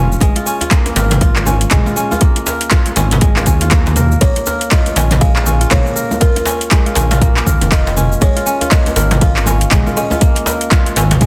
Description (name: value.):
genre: afro house.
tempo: 120 BPM.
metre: 4/4.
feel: swing 60% on 16ths.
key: unclear.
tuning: A4 = 439 Hz.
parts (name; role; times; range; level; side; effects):
kora; arpeggios; 0.0-11.3 s; Ab3 to Bb4; -22 LUFS; equal; sidechain pumping, tape echo.
smooth synth bass; bass; 0.0-11.3 s; F1 to Eb2; -18 LUFS; equal; tube saturation, sidechain pumping.
deep house drum kit; drums; 0.1-11.3 s; handclaps, hi-hat, shaker, toms; -20 LUFS; equal; overdrive.
electronic kick drum; drums; 0.2-11.3 s; none; -15 LUFS; equal; overdrive.
djembe; percussion; 0.2-11.2 s; none; -25 LUFS; equal; none.
congas; percussion; 0.4-11.3 s; none; -26 LUFS; equal; none.
buzzing kalimba; melody; 4.2-10.7 s; Bb4 to F5; -24 LUFS; equal; tape echo.
room: light reverb, studio ambience.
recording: dense, heavily limited modern master.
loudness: -13 LUFS.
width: mono.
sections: 0.0-11.3 A section.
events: none.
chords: 0.2 Absus4; 4.2 Bbm7; 8.2 Absus4.